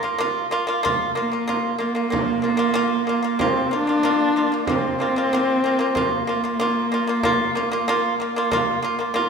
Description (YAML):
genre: mongolian traditional, Mongolian folk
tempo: 94 BPM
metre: 4/4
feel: straight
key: Bb gong mode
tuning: A4 = 441 Hz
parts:
  - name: dark horsehead fiddle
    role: melody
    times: 0.0-9.3 s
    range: Bb3 to Bb4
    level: -23 LUFS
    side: equal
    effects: none
  - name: guzheng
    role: second line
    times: 0.0-1.7 s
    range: none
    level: barely audible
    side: none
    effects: none
  - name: pipa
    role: arpeggios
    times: 0.0-9.3 s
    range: Bb3 to F4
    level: -22 LUFS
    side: right 1 dB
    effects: none
  - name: frame drum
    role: percussion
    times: 0.2-9.3 s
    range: none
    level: -31 LUFS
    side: right 2 dB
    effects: none
  - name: warm horsehead fiddle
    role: drone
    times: 0.9-9.3 s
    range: Bb3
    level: -31 LUFS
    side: equal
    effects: none
room: moderate scoring stage reverb, RT60 2.0 s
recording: minimal, uncompressed stereo recording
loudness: -19 LUFS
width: side -5 dB against mid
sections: 0.8-9.3 A section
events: none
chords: 0.0 Bb5